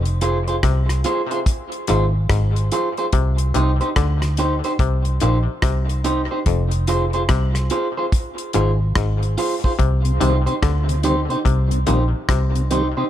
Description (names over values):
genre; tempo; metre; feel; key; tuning
dub reggae; 72 BPM; 4/4; swing 62% on 16ths; C minor; A4 = 438 Hz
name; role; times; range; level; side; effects
muted clav; riff; 0.0-12.5 s; F2 to D3; -28 LUFS; left 9 dB; dub echo
vintage muted fingered electric bass; bass; 0.0-12.9 s; F1 to D2; -19 LUFS; equal; none
damped 70s drum kit; drums; 0.1-12.9 s; hi-hat, kick drum, rim click; -22 LUFS; equal; none
electric guitar at the edge of break-up; accompaniment; 0.2-13.0 s; Eb4 to C5; -23 LUFS; right 2 dB; dub echo
mellow tonewheel organ; accompaniment; 10.0-13.0 s; C3 to C4; -26 LUFS; left 2 dB; slow rotary speaker, dub echo
room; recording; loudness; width
small room ambience; echo-heavy mix; -17 LUFS; side -11 dB against mid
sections
0.0-13.1 A section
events
break 0.0-9.8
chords
0.0 Fm; 3.1 Cm; 6.5 Fm; 9.8 Cm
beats
0.63 1.46 2.30 | 3.13 3.96 4.80 5.63 | 6.46 7.30 8.13 8.96 | 9.79 10.63 11.46 12.29